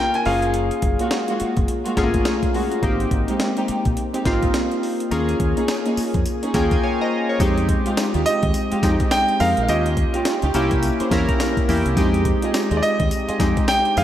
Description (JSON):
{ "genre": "R&B, new jack swing", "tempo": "105 BPM", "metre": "4/4", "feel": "swing 60% on 16ths", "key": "unclear", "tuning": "A4 = 440 Hz", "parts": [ { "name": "bright concert grand piano", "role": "melody", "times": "0.0-1.4, 8.3-14.0 s", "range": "D5 to Ab5", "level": "-22 LUFS", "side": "right 1 dB", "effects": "slapback echo" }, { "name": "warm analog keys", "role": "accompaniment", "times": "0.0-14.0 s", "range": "Ab3 to Bb5", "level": "-22 LUFS", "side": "left 2 dB", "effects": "chorus, slapback echo" }, { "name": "breakbeat sampler-style drum kit", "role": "drums", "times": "0.1-14.0 s", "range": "hi-hat, kick drum, snare drum, tambourine", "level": "-23 LUFS", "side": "equal", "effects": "none" }, { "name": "deep dub fingered electric bass", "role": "bass", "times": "0.3-14.0 s", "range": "Gb1 to F2", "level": "-23 LUFS", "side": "equal", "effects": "none" }, { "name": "dark studio string section", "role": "stabs", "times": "1.0-13.4 s", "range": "Ab3 to Eb5", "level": "-27 LUFS", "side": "right 2 dB", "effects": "none" } ], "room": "wet concert hall reverb, RT60 2.3 s", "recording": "big arena sound", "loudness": "-18 LUFS", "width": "side -11 dB against mid", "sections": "0.0-7.4 A section; 7.4-14.0 B section", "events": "synth keys fill 6.3-7.4", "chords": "0.3 Gbmaj9; 2.8 Abmaj7; 5.1 Eb7sus4; 7.4 Fm9; 9.7 Eb9; 10.5 C7b9; 12.0 Fm9", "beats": "| 0.54 1.11 1.68 2.26 | 2.83 3.40 3.97 4.54 | 5.11 5.68 6.26 6.83 | 7.40 7.97 8.54 9.11 | 9.68 10.26 10.83 11.40 | 11.97 12.54 13.11 13.68" }